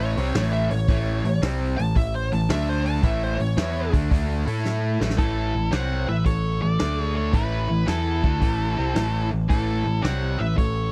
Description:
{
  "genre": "blues rock power trio and southern rock",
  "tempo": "112 BPM",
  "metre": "4/4",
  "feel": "swing 67% on 8ths",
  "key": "unclear",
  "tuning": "A4 = 440 Hz",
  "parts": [
    { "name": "bluesy overdriven lead guitar", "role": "second line", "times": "0.0-10.9 s", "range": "E4 to A5", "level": "-33 LUFS", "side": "equal", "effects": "distortion" },
    { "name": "raw garage guitar", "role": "riff", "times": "0.0-10.9 s", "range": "A2 to A4", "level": "-29 LUFS", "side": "equal", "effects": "overdrive" },
    { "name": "growling picked electric bass", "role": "bass", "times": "0.0-10.9 s", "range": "A1 to A2", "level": "-27 LUFS", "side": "equal", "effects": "overdrive" },
    { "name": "vintage drum kit", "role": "drums", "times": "0.2-10.7 s", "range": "hi-hat, kick drum, snare drum", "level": "-25 LUFS", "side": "equal", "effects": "none" },
    { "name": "octave-fuzz lead guitar", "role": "melody", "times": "5.2-10.9 s", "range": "A4 to F#5", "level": "-32 LUFS", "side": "equal", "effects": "distortion" }
  ],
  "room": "little or no reverb",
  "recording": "dry, close 1970s-style studio recording",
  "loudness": "-23 LUFS",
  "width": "mono",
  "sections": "0.0-5.2 A section; 5.2-10.9 B section",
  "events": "lead electric guitar solo 0.0-5.2; drum fill 4.6-5.2",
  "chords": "0.0 A; 2.5 D5; 3.0 A; 5.2 A5; 6.8 D5; 7.3 A5"
}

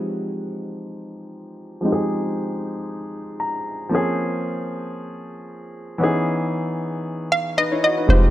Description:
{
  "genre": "amapiano",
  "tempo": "115 BPM",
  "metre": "4/4",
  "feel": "swing 55% on 16ths",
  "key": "F minor",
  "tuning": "A4 = 436 Hz",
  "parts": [
    { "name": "warm grand piano", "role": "accompaniment", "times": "0.0-8.3 s", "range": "Fb3 to Bb5", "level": "-23 LUFS", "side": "equal", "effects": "low-pass filter" },
    { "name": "hollow square pluck", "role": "melody", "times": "7.3-8.3 s", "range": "C5 to F5", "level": "-19 LUFS", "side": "right 1 dB", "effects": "chorus" },
    { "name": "deep log drum bass", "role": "bass", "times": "8.1-8.3 s", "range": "F1", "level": "-13 LUFS", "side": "equal", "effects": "none" }
  ],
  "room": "light reverb",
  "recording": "none",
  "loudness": "-21 LUFS",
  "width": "side -14 dB against mid",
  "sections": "0.0-8.1 A section",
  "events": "filter sweep on grand piano 0.0-8.1; grand piano fill 3.1-3.9",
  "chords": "0.0 Fm9; 3.9 Bbm9; 6.0 Dbm9"
}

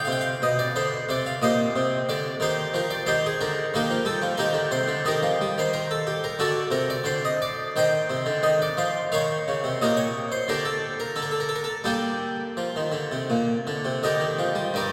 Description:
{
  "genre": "classical, baroque-style suite movement for harpsichord",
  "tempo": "79-92 BPM",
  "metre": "4/4",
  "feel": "rubato",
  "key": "C minor, G minor from 3.7 s",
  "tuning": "A4 = 440 Hz",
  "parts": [
    { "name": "harpsichord", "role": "solo", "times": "0.0-14.9 s", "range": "G2 to G5", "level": "-25 LUFS", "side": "equal", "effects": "none" }
  ],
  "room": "wet church reverb, RT60 3.2 s",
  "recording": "recorded in a church or concert hall",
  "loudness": "-25 LUFS",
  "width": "mono",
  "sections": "0.0-14.7 A section",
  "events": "none",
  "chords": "0.0 G7; 1.1 Cm; 3.7 Eb; 6.4 D; 7.8 Cm; 9.1 Eb7; 10.5 G5/D; 11.1 N.C.; 11.9 Gm"
}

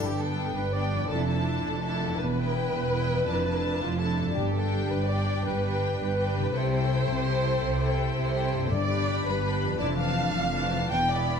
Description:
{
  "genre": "cinematic, heroic adventure film score",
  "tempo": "110 BPM (dotted quarters)",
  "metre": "12/8",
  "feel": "straight",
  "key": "G mixolydian",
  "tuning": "A4 = 440 Hz",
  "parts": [
    { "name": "warm symphonic violin section", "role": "second line", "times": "0.0-11.4 s", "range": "F4 to G5", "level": "-30 LUFS", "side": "equal", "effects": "none" },
    { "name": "concert harp", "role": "arpeggios", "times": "0.0-11.4 s", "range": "E2 to B4", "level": "-34 LUFS", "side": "left 10 dB", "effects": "none" },
    { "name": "rich symphonic cello section", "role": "bass", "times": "0.0-11.4 s", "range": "E2 to C3", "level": "-32 LUFS", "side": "right 2 dB", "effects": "none" },
    { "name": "rich symphonic double bass section", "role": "bass", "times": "0.0-11.4 s", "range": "E1 to C2", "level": "-31 LUFS", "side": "right 2 dB", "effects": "none" },
    { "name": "warm symphonic violin section", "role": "melody", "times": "0.2-11.4 s", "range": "G5 to B5", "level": "-36 LUFS", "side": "left 4 dB", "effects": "none" },
    { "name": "clear symphonic viola section", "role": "accompaniment", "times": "0.2-11.4 s", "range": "E3 to A4", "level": "-35 LUFS", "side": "right 2 dB", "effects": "none" },
    { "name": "timpani", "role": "percussion", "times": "4.4-4.9, 8.7-9.2 s", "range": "G2", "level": "-37 LUFS", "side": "left 2 dB", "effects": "none" }
  ],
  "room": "moderate scoring stage reverb, RT60 1.6 s",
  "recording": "none",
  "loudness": "-24 LUFS",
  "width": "side -6 dB against mid",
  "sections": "0.0-11.4 A section",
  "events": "none",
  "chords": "0.0 G; 1.1 Dmadd9/F; 2.2 Em; 3.3 Dmadd9/F; 4.4 G; 6.5 C6; 8.7 G; 9.8 Dmadd9/F"
}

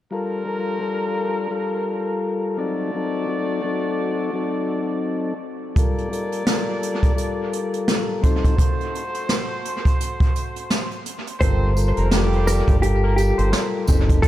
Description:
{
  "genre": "hip hop, boom-bap hip-hop",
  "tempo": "85 BPM",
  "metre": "4/4",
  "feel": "swing 59% on 16ths",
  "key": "G minor",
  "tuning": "A4 = 439 Hz",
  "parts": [
    { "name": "mellow tonewheel organ", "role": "accompaniment", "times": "0.1-14.3 s", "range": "F#3 to Bb4", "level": "-24 LUFS", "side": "left 3 dB", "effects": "high-pass filter, low-pass filter, dub echo" },
    { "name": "clear horn section", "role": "stabs", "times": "0.1-13.7 s", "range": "F3 to D5", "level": "-30 LUFS", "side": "right 2 dB", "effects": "high-pass filter, low-pass filter, dub echo" },
    { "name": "jazz brush drum kit", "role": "drums", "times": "5.8-14.3 s", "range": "hi-hat, kick drum, snare drum", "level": "-20 LUFS", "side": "equal", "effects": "dub echo" },
    { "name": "mellow electric guitar", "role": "melody", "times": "11.4-14.3 s", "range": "G4 to C5", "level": "-25 LUFS", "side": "equal", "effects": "tremolo, high-pass filter, low-pass filter, dub echo" },
    { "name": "deep dub fingered electric bass", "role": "bass", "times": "11.4-14.3 s", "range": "F1 to G1", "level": "-20 LUFS", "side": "equal", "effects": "none" },
    { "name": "tambourine", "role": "percussion", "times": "11.8-14.1 s", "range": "none", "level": "-38 LUFS", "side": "right 3 dB", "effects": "dub echo" }
  ],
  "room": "light reverb, small room reverb",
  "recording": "echo-heavy mix",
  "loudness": "-19 LUFS",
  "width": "side -13 dB against mid",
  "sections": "0.1-11.4 A section; 11.4-14.3 B section",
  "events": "none",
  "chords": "0.1 Gm9; 2.6 D7b9/F#; 5.8 Gm9; 8.2 F#dim; 11.4 Gm9"
}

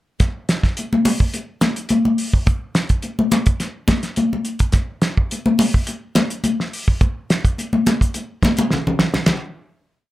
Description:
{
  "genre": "afrobeat",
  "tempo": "106 BPM",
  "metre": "4/4",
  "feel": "straight",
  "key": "none",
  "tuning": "none",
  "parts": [
    { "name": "cloth-damped thuddy drum kit", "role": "drums", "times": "0.2-9.4 s", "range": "hi-hat, kick drum, ride cymbal, snare drum", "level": "-18 LUFS", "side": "right 1 dB", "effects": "none" },
    { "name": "congas", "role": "percussion", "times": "0.2-9.4 s", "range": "none", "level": "-18 LUFS", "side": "left 1 dB", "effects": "none" }
  ],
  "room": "light reverb",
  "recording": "none",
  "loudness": "-17 LUFS",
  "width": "side -16 dB against mid",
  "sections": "0.2-9.3 groove; 9.3-10.1 final hit",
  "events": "drum fill 8.4-9.3",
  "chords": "none"
}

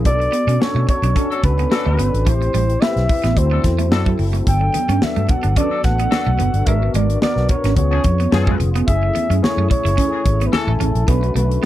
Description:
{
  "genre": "polished 1980s jazz-funk pop",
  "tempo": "109 BPM",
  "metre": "4/4",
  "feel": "swing 54% on 16ths",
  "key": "unclear",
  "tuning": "A4 = 443 Hz",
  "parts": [
    { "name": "barky tine electric piano", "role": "accompaniment", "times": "0.0-11.7 s", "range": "F#3 to G#5", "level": "-24 LUFS", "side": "left 4 dB", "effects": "overdrive, ensemble chorus" },
    { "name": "vintage muted fingered electric bass", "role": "bass", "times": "0.0-11.6 s", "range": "E#1 to B2", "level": "-18 LUFS", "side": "equal", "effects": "none" },
    { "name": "breathy flugelhorn", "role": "melody", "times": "0.1-11.6 s", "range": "A4 to G5", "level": "-22 LUFS", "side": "equal", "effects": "none" },
    { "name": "tight funk drum kit", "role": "drums", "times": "0.1-11.6 s", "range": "hi-hat, kick drum, snare drum", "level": "-19 LUFS", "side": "equal", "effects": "none" },
    { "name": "clean electric guitar", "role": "riff", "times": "0.2-11.7 s", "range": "F#3 to E4", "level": "-25 LUFS", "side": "right 8 dB", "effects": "analog chorus" },
    { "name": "warm horn section", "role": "second line", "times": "1.3-10.7 s", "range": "E3 to A4", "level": "-25 LUFS", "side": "left 5 dB", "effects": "none" },
    { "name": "congas", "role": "percussion", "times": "4.5-11.5 s", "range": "none", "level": "-30 LUFS", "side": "left 3 dB", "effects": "none" }
  ],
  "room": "little or no reverb",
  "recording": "none",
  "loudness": "-15 LUFS",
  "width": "side -14 dB against mid",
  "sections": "0.0-11.7 A section",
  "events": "none",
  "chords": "0.1 Bm7; 2.3 Am7; 3.4 D7; 4.5 Gmaj9; 6.7 G#m7b5; 7.8 C#7; 8.9 F#m9; 11.1 Bm7"
}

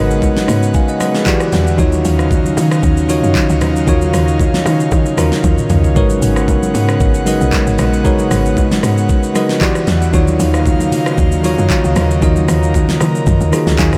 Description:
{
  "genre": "amapiano",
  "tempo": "115 BPM",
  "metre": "4/4",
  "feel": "swing 55% on 16ths",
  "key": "Eb minor",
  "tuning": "A4 = 440 Hz",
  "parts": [
    { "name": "bell-like tine electric piano", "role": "accompaniment", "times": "0.0-14.0 s", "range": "Eb3 to Ab5", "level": "-18 LUFS", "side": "equal", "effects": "none" },
    { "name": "airy breathy pad", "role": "sustained chords", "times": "0.0-14.0 s", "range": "Db3 to Gb5", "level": "-22 LUFS", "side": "equal", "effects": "chorus, sidechain pumping" },
    { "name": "woody log drum bass", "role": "bass", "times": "0.0-13.9 s", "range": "Ab1 to Eb3", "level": "-19 LUFS", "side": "equal", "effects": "none" },
    { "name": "smooth R&B drum kit", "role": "drums", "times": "0.1-14.0 s", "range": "handclaps, hi-hat, kick drum, rim click, shaker, snare drum, toms", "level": "-19 LUFS", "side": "equal", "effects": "none" },
    { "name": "congas", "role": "percussion", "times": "0.2-13.9 s", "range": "none", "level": "-27 LUFS", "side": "equal", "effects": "none" }
  ],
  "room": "moderate huge ambient reverb, RT60 9.0 s",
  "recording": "dreamy mix soaked in reverb",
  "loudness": "-13 LUFS",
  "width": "mono",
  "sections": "0.0-14.0 A section",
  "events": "drum fill 5.4-6.0",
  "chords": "0.0 Abm11; 1.3 Em9; 1.8 Ebm9; 6.0 Abm11; 9.6 Em9; 10.1 Ebm9"
}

